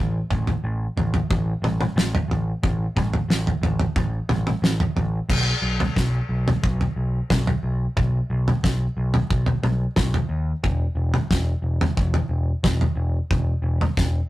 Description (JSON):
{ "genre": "psychedelic rock", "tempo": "90 BPM", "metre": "4/4", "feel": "straight", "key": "unclear", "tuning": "A4 = 440 Hz", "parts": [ { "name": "overdriven picked electric bass", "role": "bass", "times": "0.0-14.2 s", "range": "E1 to D#2", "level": "-23 LUFS", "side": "equal", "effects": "none" }, { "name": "damped 70s drum kit", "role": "drums", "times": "0.3-14.1 s", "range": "crash cymbal, kick drum, snare drum, toms", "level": "-22 LUFS", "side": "equal", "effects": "none" } ], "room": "moderate studio reverb, RT60 0.5 s", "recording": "rough rehearsal-room recording, tube saturation", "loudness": "-20 LUFS", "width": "side -16 dB against mid", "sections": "0.0-5.3 A section; 5.3-14.3 B section", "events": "none", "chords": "none", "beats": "0.64 1.31 1.97 | 2.64 3.30 3.97 4.63 | 5.30 5.97 6.63 7.30 | 7.96 8.63 9.30 9.96 | 10.63 11.30 11.96 12.63 | 13.30 13.96" }